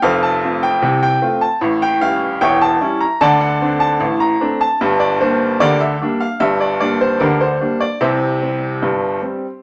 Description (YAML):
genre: ragtime piano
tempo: 75 BPM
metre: 2/4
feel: straight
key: unclear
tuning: A4 = 440 Hz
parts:
  - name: clear upright piano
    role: solo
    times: 0.0-9.6 s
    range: E1 to Bb5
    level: -16 LUFS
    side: equal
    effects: none
room: wet studio reverb, RT60 0.8 s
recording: none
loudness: -16 LUFS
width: mono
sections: 0.0-9.6 A section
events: none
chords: 0.0 F; 1.6 A7; 3.2 D7; 4.8 Gm; 8.0 C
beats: | 0.03 0.82 | 1.62 2.42 | 3.21 4.01 | 4.81 5.61 | 6.41 7.21 | 8.02 8.83